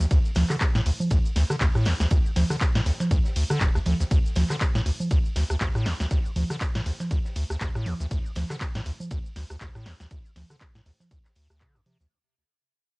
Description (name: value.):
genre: acid house.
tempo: 120 BPM.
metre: 4/4.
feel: swing 57% on 16ths.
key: unclear.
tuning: A4 = 441 Hz.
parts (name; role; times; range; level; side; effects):
acid bass, square; riff; 0.0-12.1 s; D1 to D3; -26 LUFS; equal; overdrive, cassette tape.
deep reggae drum kit; drums; 0.0-12.0 s; hi-hat, snare drum; -44 LUFS; right 1 dB; none.
punchy analog drum machine; drums; 0.0-12.1 s; congas, handclaps, hi-hat, ride cymbal, rim click, shaker, snare drum; -30 LUFS; right 1 dB; cassette tape.
electronic kick drum; drums; 0.1-11.7 s; none; -24 LUFS; equal; cassette tape.
room: light reverb.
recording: home recording on cassette.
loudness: -22 LUFS.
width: side -26 dB against mid.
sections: 0.0-12.1 A section.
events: drop 0.0-12.1; fade-out 4.1-12.1.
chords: none.